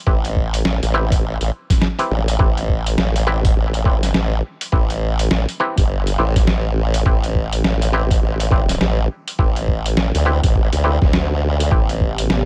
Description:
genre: glitch hop.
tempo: 103 BPM.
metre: 4/4.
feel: swing 60% on 16ths.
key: A minor.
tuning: A4 = 440 Hz.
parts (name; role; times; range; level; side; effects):
auto-wah clav; stabs; 0.1-11.9 s; C4 to B4; -27 LUFS; equal; overdrive, sidechain pumping, delay.
formant-sweep wobble bass; bass; 0.1-12.5 s; G1 to D2; -21 LUFS; equal; chorus, overdrive.
electronic kick drum; drums; 0.1-12.1 s; none; -20 LUFS; equal; none.
boom bap sampler-style drum kit; drums; 0.2-12.4 s; hi-hat, snare drum; -24 LUFS; equal; none.
warbly tape-like pad; sustained chords; 11.9-12.5 s; C3 to G4; -28 LUFS; equal; chorus, built-in reverb, sidechain pumping.
room: little or no reverb.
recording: none.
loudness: -18 LUFS.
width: mono.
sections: 0.0-12.5 A section.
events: kick drops out 11.1-11.7.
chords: 0.0 Am9.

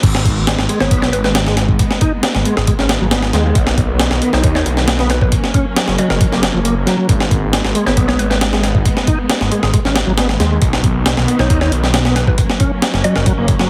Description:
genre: breakbeat, breaks.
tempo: 136 BPM.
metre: 4/4.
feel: straight.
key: G# minor.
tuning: A4 = 440 Hz.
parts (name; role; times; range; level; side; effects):
warm symphonic string section; sustained chords; 0.0-13.7 s; D#3 to C#4; -25 LUFS; equal; sidechain pumping.
phased detuned saw bass; bass; 0.0-13.7 s; F#1 to D#2; -20 LUFS; equal; phaser.
breakbeat sampler-style drum kit; drums; 0.0-13.7 s; crash cymbal, hi-hat, kick drum, snare drum; -18 LUFS; equal; high-pass filter on hats, high-pass filter on snare, high-pass filter on kick, high-pass filter on cymbals.
bright tonewheel organ; riff; 0.7-13.7 s; E#3 to D#4; -22 LUFS; equal; overdrive, chorus vibrato, slow rotary speaker, tube saturation, delay.
mallet-like synth pluck; melody; 0.8-13.5 s; G#4 to D#5; -26 LUFS; equal; chorus, phaser, telephone sound, delay.
room: light reverb.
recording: heavily compressed radio sound, multiband compression.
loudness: -15 LUFS.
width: mono.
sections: 0.0-13.7 A section.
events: drop 0.0-13.7.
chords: 0.0 G#madd9; 3.6 Bmaj7; 5.3 F#; 7.1 G#madd9; 10.6 Bmaj7; 12.4 F#.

